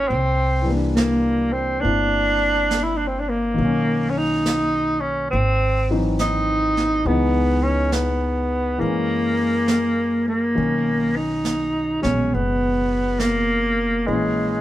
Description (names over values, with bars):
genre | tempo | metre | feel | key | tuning
jazz ballad | 69 BPM | 4/4 | swing 67% on 8ths | B major | A4 = 441 Hz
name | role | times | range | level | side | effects
breathy tenor saxophone | melody | 0.0-14.6 s | G#3 to E4 | -20 LUFS | equal | none
warm concert grand piano | accompaniment | 0.0-14.6 s | B2 to A#4 | -24 LUFS | left 1 dB | none
upright bass | bass | 0.0-14.6 s | F#1 to F#2 | -25 LUFS | equal | none
jazz brush drum kit | drums | 0.1-14.6 s | brushed snare drum, hi-hat, snare drum | -29 LUFS | right 2 dB | none
room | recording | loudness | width
moderate stone room reverb, RT60 1.0 s | band playing live in one room | -18 LUFS | side -14 dB against mid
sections
0.0-10.6 A section; 10.6-14.6 A section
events
none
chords
0.1 C9; 3.6 Bmaj9; 5.3 G#7b13; 7.1 C#m7; 8.8 F#7; 10.6 Bmaj9; 14.1 A#m7b5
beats
| 0.10 0.97 1.84 2.71 | 3.58 4.45 5.32 6.19 | 7.06 7.93 8.80 9.69 | 10.58 11.46 12.34 13.21 | 14.08